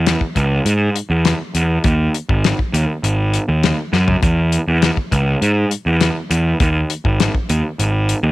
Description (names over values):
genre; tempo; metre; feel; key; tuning
psychedelic rock; 101 BPM; 4/4; straight; unclear; A4 = 440 Hz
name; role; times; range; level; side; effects
fuzz picked electric bass; bass; 0.0-8.3 s; G#1 to G#2; -15 LUFS; right 1 dB; overdrive
damped 70s drum kit; drums; 0.1-8.2 s; hi-hat, kick drum, snare drum, toms; -19 LUFS; left 3 dB; none
room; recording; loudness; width
little or no reverb; 1960s-style stereo; -14 LUFS; side -17 dB against mid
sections
0.0-8.3 A section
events
drum fill 3.9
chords
none